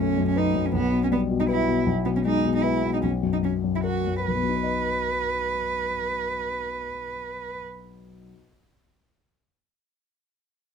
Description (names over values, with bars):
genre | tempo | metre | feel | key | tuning
quick classical-period movement for piano trio | 136-162 BPM | 3/4 | rubato | B major | A4 = 440 Hz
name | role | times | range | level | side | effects
warm cello | second line | 0.0-7.6 s | B3 to B4 | -26 LUFS | right 5 dB | none
warm concert grand piano | accompaniment | 0.0-8.5 s | B1 to D#5 | -25 LUFS | left 4 dB | none
room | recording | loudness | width
light reverb | close, detailed microphones | -22 LUFS | side -7 dB against mid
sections
0.0-4.3 A section; 4.3-6.8 B section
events
slowing down 1.3-4.3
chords
0.0 B5; 0.7 Em/B; 1.9 B6; 3.0 F#/B; 4.3 B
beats
0.36 | 0.74 1.11 1.49 | 1.86 2.25 2.63 | 3.03 3.43 3.85 | 4.28 4.71 5.14 | 5.56 5.98 6.41